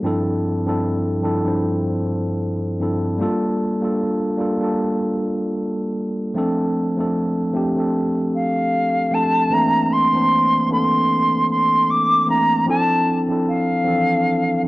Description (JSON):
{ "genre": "R&B", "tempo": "76 BPM", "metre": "4/4", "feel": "swing 58% on 16ths", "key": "unclear", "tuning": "A4 = 440 Hz", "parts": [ { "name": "mellow tine electric piano", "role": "accompaniment", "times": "0.0-14.7 s", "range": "G2 to C5", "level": "-19 LUFS", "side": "equal", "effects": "fast stereo tremolo, cassette tape, plate reverb" }, { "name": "silver concert flute", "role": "melody", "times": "8.3-14.6 s", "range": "F5 to D6", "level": "-17 LUFS", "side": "equal", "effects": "cassette tape, plate reverb" } ], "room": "wet studio reverb, RT60 0.6 s", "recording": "home recording on cassette", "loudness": "-17 LUFS", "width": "side -19 dB against mid", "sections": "0.0-9.5 A section; 9.5-14.7 B section", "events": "none", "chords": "0.0 Dm9/G; 3.2 Gm9; 6.4 F6; 9.5 C13; 12.7 Dm9", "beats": "| 0.05 0.84 1.63 2.42 | 3.21 3.99 4.78 5.57 | 6.36 7.15 7.94 8.73 | 9.52 10.31 11.10 11.89 | 12.68 13.47 14.26" }